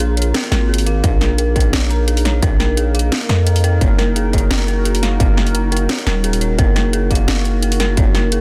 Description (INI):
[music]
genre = half-time drum and bass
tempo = 173 BPM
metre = 4/4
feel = swing 53% on 16ths, half-time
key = unclear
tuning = A4 = 441 Hz
[part]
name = dark analog pad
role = sustained chords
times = 0.0-8.4 s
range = Bb3 to Bb4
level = -28 LUFS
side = equal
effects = chorus, phaser, vintage 12-bit sampler grit, sidechain pumping
[part]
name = dark detuned synth bell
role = arpeggios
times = 0.0-8.4 s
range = Ab4 to Bb5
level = -27 LUFS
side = equal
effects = chorus, delay
[part]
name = growling 808-style bass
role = bass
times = 0.0-8.4 s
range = Eb1 to F2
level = -19 LUFS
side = equal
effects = tube saturation
[part]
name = drum and bass drum kit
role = drums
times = 0.0-8.4 s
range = hi-hat, snare drum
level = -24 LUFS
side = equal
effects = overdrive
[part]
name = electronic kick drum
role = drums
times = 1.0-8.0 s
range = none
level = -18 LUFS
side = equal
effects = distortion
[sound]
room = digital ambience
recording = dense, heavily limited modern master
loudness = -16 LUFS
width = mono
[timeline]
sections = 0.0-8.4 A section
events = none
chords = 0.0 Bbm; 3.8 Gb6